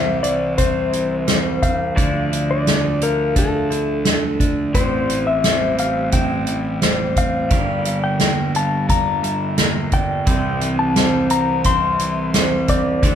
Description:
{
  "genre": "post-rock",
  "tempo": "87 BPM",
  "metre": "4/4",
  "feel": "straight",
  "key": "unclear",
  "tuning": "A4 = 437 Hz",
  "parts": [
    { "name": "clean lap steel guitar", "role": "melody", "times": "0.0-13.2 s", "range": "A4 to C6", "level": "-22 LUFS", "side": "left 4 dB", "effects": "none" },
    { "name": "pedal steel guitar", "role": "sustained chords", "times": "0.0-13.2 s", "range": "D3 to A5", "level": "-28 LUFS", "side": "right 2 dB", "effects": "none" },
    { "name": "semi-hollow electric guitar", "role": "arpeggios", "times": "0.0-13.2 s", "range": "G2 to D4", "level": "-26 LUFS", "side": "left 2 dB", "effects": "none" },
    { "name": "vibraphone with hard mallets", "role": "arpeggios", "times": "0.0-13.2 s", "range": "C5 to F5", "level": "-28 LUFS", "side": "right 1 dB", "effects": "none" },
    { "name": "fuzz fingered electric bass", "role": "bass", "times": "0.0-13.2 s", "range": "G1 to D2", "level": "-23 LUFS", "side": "right 1 dB", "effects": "overdrive" },
    { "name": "soft-mallet drum kit", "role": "drums", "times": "0.2-13.2 s", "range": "hi-hat, kick drum, snare drum", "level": "-20 LUFS", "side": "right 1 dB", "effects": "none" }
  ],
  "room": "wet large studio reverb, RT60 1.3 s",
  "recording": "band playing live in one room",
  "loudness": "-16 LUFS",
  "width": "side -9 dB against mid",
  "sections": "0.0-13.2 A section",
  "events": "none",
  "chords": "0.0 C; 2.0 Dm; 4.7 Am7; 7.5 Gm; 10.3 C",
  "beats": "0.59 1.28 | 1.98 2.67 3.36 4.05 | 4.75 5.44 6.13 6.82 | 7.51 8.21 8.89 9.59 | 10.28 10.97 11.66 12.35 | 13.04"
}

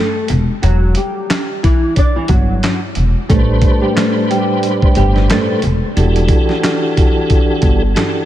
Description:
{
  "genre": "hip hop, boom-bap hip-hop",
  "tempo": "90 BPM",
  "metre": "4/4",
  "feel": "swing 56% on 16ths",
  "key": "A minor",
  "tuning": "A4 = 440 Hz",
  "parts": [
    { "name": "nylon-string guitar", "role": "melody", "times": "0.0-5.6 s", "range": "E3 to D5", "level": "-19 LUFS", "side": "left 1 dB", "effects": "ensemble chorus, high-pass filter, low-pass filter, ping-pong delay" },
    { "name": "upright bass", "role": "bass", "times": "0.3-7.9 s", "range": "E1 to A1", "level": "-15 LUFS", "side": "equal", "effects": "none" },
    { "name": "dusty soul sampler-style drum kit", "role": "drums", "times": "0.3-8.1 s", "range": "handclaps, hi-hat, kick drum, snare drum", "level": "-16 LUFS", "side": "equal", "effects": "vintage 12-bit sampler grit" },
    { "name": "tonewheel organ", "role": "accompaniment", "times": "3.3-8.3 s", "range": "A2 to C5", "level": "-16 LUFS", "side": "right 1 dB", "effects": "chorus vibrato, fast rotary speaker, cassette tape, high-pass filter, low-pass filter" }
  ],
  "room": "light reverb, digital ambience",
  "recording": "none",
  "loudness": "-11 LUFS",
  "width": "side -12 dB against mid",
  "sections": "0.0-8.3 A section",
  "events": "break 0.0-3.3",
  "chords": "0.0 A5; 0.6 Emadd9; 3.3 Am11; 6.0 Em11",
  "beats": "| 0.63 1.30 1.97 2.63 | 3.30 3.96 4.63 5.30 | 5.96 6.63 7.30 7.96"
}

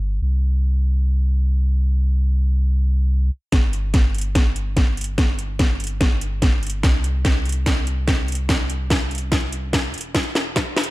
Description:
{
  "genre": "future bass",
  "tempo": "145 BPM",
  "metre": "4/4",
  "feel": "swing 56% on 16ths, half-time",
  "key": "C major",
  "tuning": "A4 = 440 Hz",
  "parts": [
    { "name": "saturated sub bass", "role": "bass", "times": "0.0-10.9 s", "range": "E1 to C2", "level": "-21 LUFS", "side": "equal", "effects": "sidechain pumping" },
    { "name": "electronic kick drum", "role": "drums", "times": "3.5-10.7 s", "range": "none", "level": "-18 LUFS", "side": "equal", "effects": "overdrive" },
    { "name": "trap drum kit", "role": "drums", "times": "3.5-10.9 s", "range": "hi-hat, snare drum", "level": "-23 LUFS", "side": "equal", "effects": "overdrive" }
  ],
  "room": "little or no reverb",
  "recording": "dark, warm production, high-pass filter",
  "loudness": "-18 LUFS",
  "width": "side -18 dB against mid",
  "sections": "0.0-3.5 A section; 3.5-10.9 B section",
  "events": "build-up 3.5-10.9; drum fill 3.5-10.9; filter sweep 3.5-10.9",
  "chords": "none",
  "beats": "| 0.21 0.63 1.04 1.46 | 1.87 2.28 2.70 3.11 | 3.52 3.94 4.35 4.77 | 5.18 5.59 6.01 6.42 | 6.84 7.25 7.66 8.08 | 8.49 8.90 9.32 9.73 | 10.15 10.56"
}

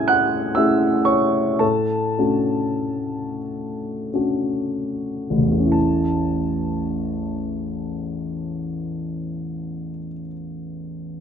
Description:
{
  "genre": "classical, impressionist solo piano",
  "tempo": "23-43 BPM (dotted quarters)",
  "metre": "6/8",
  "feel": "rubato",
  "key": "A major",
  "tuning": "A4 = 440 Hz",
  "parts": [
    { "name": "warm grand piano", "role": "solo", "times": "0.0-11.2 s", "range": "A1 to G#6", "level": "-20 LUFS", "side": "equal", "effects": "none" }
  ],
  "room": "light reverb",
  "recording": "close, detailed microphones",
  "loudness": "-20 LUFS",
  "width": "side -8 dB against mid",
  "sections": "0.0-5.7 A section; 5.7-10.0 B section",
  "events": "slowing down 0.0-5.7",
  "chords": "0.0 Amaj7; 1.6 Dmaj7/A; 5.7 A",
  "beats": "0.09 | 1.61 3.42 | 5.73 7.84"
}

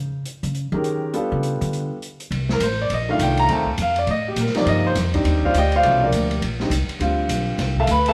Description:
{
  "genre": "modal jazz",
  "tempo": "205 BPM",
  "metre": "4/4",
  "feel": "swing 62% on 8ths",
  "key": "C dorian",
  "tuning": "A4 = 439 Hz",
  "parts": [
    { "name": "upright bass", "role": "bass", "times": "0.0-8.1 s", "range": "A1 to Eb3", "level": "-25 LUFS", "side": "equal", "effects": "none" },
    { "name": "open jazz drum kit", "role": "drums", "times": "0.3-8.1 s", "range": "hi-hat, kick drum, ride cymbal, snare drum", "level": "-31 LUFS", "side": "equal", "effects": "none" },
    { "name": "warm concert grand piano", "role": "accompaniment", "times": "0.7-8.1 s", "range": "Bb2 to B5", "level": "-23 LUFS", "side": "equal", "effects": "none" }
  ],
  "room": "moderate large studio reverb, RT60 1.3 s",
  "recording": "band playing live in one room, vinyl crackle",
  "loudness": "-21 LUFS",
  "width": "mono",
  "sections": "0.0-2.3 A section; 2.3-8.1 A section",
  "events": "upright bass solo 0.0-2.3",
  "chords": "0.0 Bbm11; 1.1 G7; 2.3 Cm11; 7.0 Dm11",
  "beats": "0.26 0.55 0.85 | 1.14 1.43 1.73 2.02 | 2.31 2.61 2.90 3.19 | 3.49 3.78 4.07 4.37 | 4.66 4.95 5.25 5.54 | 5.83 6.12 6.42 6.71 | 7.00 7.29 7.59 7.88"
}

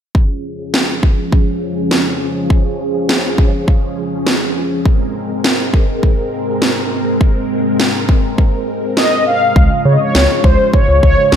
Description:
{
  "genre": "synth-pop",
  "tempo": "102 BPM",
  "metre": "4/4",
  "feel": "straight",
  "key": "Db major",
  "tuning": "A4 = 440 Hz",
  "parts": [
    { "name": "string machine, cellos", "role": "sustained chords", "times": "0.1-11.4 s", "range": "Db3 to Bb4", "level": "-18 LUFS", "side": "equal", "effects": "phaser, ensemble chorus, low-pass filter" },
    { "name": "house drum kit", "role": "drums", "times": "0.1-11.4 s", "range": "kick drum, snare drum", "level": "-13 LUFS", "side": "equal", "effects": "gated reverb" },
    { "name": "mellow synth brass", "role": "melody", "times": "9.0-11.4 s", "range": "C5 to F5", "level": "-13 LUFS", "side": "equal", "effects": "chorus" },
    { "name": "round analog bass", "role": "bass", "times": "9.6-11.4 s", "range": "Db2 to Db3", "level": "-13 LUFS", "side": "equal", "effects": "none" }
  ],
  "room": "light reverb, digital ambience",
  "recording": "none",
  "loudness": "-12 LUFS",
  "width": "side -8 dB against mid",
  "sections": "0.1-9.6 A section; 9.6-11.4 B section",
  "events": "filter sweep on string machine 0.1-9.6",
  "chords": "0.1 Db; 4.9 Abadd9; 9.6 Db",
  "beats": "| 0.15 0.74 1.32 1.91 | 2.50 3.09 3.68 4.27 | 4.85 5.44 6.03 6.62 | 7.21 7.79 8.38 8.97 | 9.56 10.15 10.74 11.32"
}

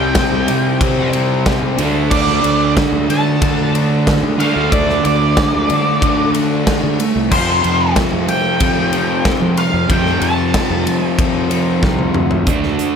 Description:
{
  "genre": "classic rock",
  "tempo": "93 BPM",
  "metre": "4/4",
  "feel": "straight",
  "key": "unclear",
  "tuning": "A4 = 440 Hz",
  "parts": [
    { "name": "octave-fuzz lead guitar", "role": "melody", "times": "0.0-11.5 s", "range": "C5 to A5", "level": "-19 LUFS", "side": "right 1 dB", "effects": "distortion" },
    { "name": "crunchy overdriven guitar", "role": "riff", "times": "0.0-13.0 s", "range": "F2 to D4", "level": "-22 LUFS", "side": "left 12 dB", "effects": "none" },
    { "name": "crunchy overdriven guitar", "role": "riff", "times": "0.0-13.0 s", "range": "F2 to D4", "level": "-20 LUFS", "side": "right 9 dB", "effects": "none" },
    { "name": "crunchy overdriven guitar", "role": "riff", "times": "0.0-12.5 s", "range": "F2 to D4", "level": "-23 LUFS", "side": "left 1 dB", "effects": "none" },
    { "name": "fuzz fingered electric bass", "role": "bass", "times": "0.0-12.8 s", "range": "C2 to F3", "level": "-20 LUFS", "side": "equal", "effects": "overdrive" },
    { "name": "big rock drum kit", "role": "drums", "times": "0.1-12.9 s", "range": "crash cymbal, hi-hat, kick drum, ride cymbal, snare drum, toms", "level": "-18 LUFS", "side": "equal", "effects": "none" }
  ],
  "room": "light reverb",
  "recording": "none",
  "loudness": "-13 LUFS",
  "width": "side -7 dB against mid",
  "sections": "0.0-12.5 A section",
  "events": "drum fill 11.8-12.5",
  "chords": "0.0 C5; 1.8 D5; 7.3 F",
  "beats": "0.15 0.81 1.46 | 2.11 2.77 3.42 4.07 | 4.72 5.37 6.02 6.67 | 7.32 7.96 8.61 9.25 | 9.90 10.54 11.18 11.82 | 12.47"
}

